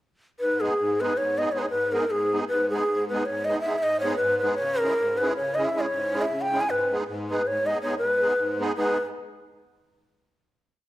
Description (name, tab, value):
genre	balkan folk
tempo	315 BPM (eighths)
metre	11/8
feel	straight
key	G# minor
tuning	A4 = 440 Hz
part	breathy ney	melody	0.4-9.0 s	G#4 to G#5	-24 LUFS	equal	none
part	musette accordion	accompaniment	0.4-9.0 s	G#2 to G#4	-29 LUFS	right 1 dB	none
room	moderate recital hall reverb, RT60 1.5 s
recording	none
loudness	-23 LUFS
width	side -16 dB against mid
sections	0.4-8.8 A section; 8.8-10.8 final chord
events	none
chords	0.4 G#m; 4.6 C#m; 6.7 G#m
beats	| 0.39 0.58 0.77 0.96 1.16 1.35 1.54 1.73 1.92 2.11 2.30 | 2.49 2.68 2.87 3.06 3.25 3.45 3.64 3.83 4.02 4.21 4.40 | 4.59 4.78 4.98 5.17 5.36 5.55 5.74 5.93 6.12 6.31 6.50 | 6.69 6.88 7.07 7.26 7.45 7.64 7.83 8.02 8.21 8.40 8.59 | 8.77 8.96